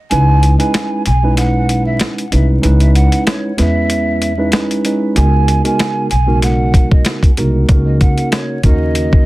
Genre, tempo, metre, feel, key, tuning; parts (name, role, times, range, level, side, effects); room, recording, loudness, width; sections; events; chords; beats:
hip hop, boom-bap hip-hop; 95 BPM; 4/4; swing 54% on 16ths; C# dorian; A4 = 439 Hz
breathy mellow jazz flute; melody; 0.1-9.3 s; C#5 to G#5; -20 LUFS; right 2 dB; high-pass filter, low-pass filter, ping-pong delay
mellow tine electric piano; accompaniment; 0.1-9.3 s; C#3 to B4; -17 LUFS; right 1 dB; cassette tape, high-pass filter, low-pass filter
upright bass; bass; 0.1-9.3 s; B1 to E2; -13 LUFS; equal
boom bap sampler-style drum kit; drums; 0.1-9.3 s; hi-hat, kick drum, snare drum; -14 LUFS; equal
light reverb; dense, heavily limited modern master, vinyl crackle; -11 LUFS; side -18 dB against mid
0.0-9.3 A section
break 0.0-5.2; kick muted 5.2-5.8
0.1 C#m7; 5.2 G#m7; 7.7 D#m7/C#
| 0.11 0.74 1.37 2.01 | 2.64 3.27 3.90 4.53 | 5.16 5.79 6.43 7.06 | 7.69 8.32 8.95